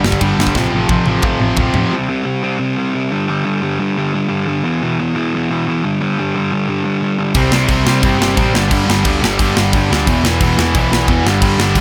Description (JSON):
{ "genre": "punk rock", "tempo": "177 BPM", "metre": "4/4", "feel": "straight", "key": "G major", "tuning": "A4 = 439 Hz", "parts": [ { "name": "distorted electric guitar", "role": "riff", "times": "0.0-1.9, 7.4-11.8 s", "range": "E2 to C4", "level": "-23 LUFS", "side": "equal", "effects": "distortion" }, { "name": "sludgy distorted guitar", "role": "riff", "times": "0.0-11.8 s", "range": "E2 to C4", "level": "-19 LUFS", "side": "equal", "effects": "overdrive" }, { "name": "tight distorted guitar", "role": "riff", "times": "0.0-1.9, 7.4-11.8 s", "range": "E2 to C4", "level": "-22 LUFS", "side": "equal", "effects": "distortion" }, { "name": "hollow-body short-scale picked electric bass", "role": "bass", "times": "0.0-1.9, 7.3-11.8 s", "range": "E1 to C3", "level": "-21 LUFS", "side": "equal", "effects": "none" }, { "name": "tight metal drum kit", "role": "drums", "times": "0.0-1.8, 7.3-11.8 s", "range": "crash cymbal, kick drum, ride cymbal, snare drum, toms", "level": "-19 LUFS", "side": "equal", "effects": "none" } ], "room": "little or no reverb", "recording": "none", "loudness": "-15 LUFS", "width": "mono", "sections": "0.0-1.9 A section; 1.9-11.8 B section", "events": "drum fill 0.6-1.9", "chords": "0.0 G5; 0.6 F/A; 1.9 C5; 3.1 G5; 4.6 E5; 5.8 G5; 7.4 C5; 8.5 G5; 10.1 E5; 11.2 G5", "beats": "0.21 | 0.55 0.89 1.24 1.58 | 1.92 2.26 2.60 2.94 | 3.28 3.62 3.96 4.30 | 4.64 4.98 5.32 5.66 | 6.00 6.34 6.68 7.02 | 7.36 7.70 8.04 8.38 | 8.71 9.05 9.39 9.73 | 10.07 10.40 10.74 11.08 | 11.42 11.76" }